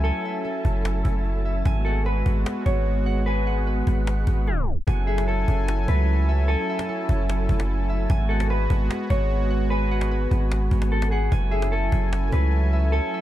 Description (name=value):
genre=hip hop, atmospheric cloud-rap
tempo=149 BPM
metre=4/4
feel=half-time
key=F# minor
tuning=A4 = 441 Hz
part: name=mellow electric guitar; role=melody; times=0.0-13.2 s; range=G#4 to C#5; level=-30 LUFS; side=left 1 dB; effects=digital delay
part: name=warm analog pad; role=sustained chords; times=0.0-13.2 s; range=F#3 to G#5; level=-29 LUFS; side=equal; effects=chorus
part: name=concert harp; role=arpeggios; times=0.0-13.2 s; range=A3 to G#5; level=-35 LUFS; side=right 3 dB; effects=digital delay
part: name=long sustained 808-style bass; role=bass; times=0.0-13.0 s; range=F#1 to C#2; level=-22 LUFS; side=equal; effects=none
part: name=cajon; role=drums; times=0.0-13.0 s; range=none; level=-31 LUFS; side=equal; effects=none
part: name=wind-like tuned noise texture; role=texture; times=0.0-13.2 s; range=A3 to G#5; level=-38 LUFS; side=right 1 dB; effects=built-in reverb
room=small room ambience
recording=dark, warm production, tape stop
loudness=-20 LUFS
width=side -13 dB against mid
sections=0.0-4.9 A section; 4.9-13.2 B section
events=tape stop 4.5-4.9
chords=0.0 F#m9; 1.7 G#m7; 4.9 F#m9; 8.1 G#m7; 11.3 F#m9